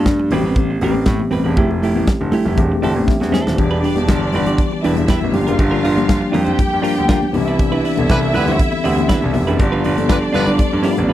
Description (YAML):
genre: disco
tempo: 120 BPM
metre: 4/4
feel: straight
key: C major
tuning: A4 = 439 Hz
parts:
  - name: mellow tine electric piano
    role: accompaniment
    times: 0.0-11.1 s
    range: E3 to G5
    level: -20 LUFS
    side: left 2 dB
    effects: medium stereo tremolo
  - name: semi-hollow electric guitar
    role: accompaniment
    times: 0.0-11.1 s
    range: A3 to D5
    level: -22 LUFS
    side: right 5 dB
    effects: none
  - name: clear concert grand piano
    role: bass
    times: 0.0-11.1 s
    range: Eb1 to A2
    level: -20 LUFS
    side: right 1 dB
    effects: none
  - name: modern studio drum kit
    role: drums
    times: 0.1-11.1 s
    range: hi-hat, kick drum, snare drum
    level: -18 LUFS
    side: equal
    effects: none
  - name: congas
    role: percussion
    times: 0.1-11.1 s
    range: none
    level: -25 LUFS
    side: left 3 dB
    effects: none
  - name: clear studio string section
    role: second line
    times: 3.6-11.1 s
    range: D4 to G5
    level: -23 LUFS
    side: left 2 dB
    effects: none
  - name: warm horn section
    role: stabs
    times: 8.1-10.5 s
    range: G3 to B4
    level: -20 LUFS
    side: right 1 dB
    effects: none
room: light reverb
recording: dry, close 1970s-style studio recording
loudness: -14 LUFS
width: side -13 dB against mid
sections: 0.0-3.6 A section; 3.6-11.1 B section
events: tine electric piano fill 2.6-3.6; drum fill 3.1-3.6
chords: 0.3 Am9; 1.6 Fmaj9; 2.6 C69/E; 3.6 Em7; 5.3 Gm7; 7.3 Cmaj9; 9.6 G7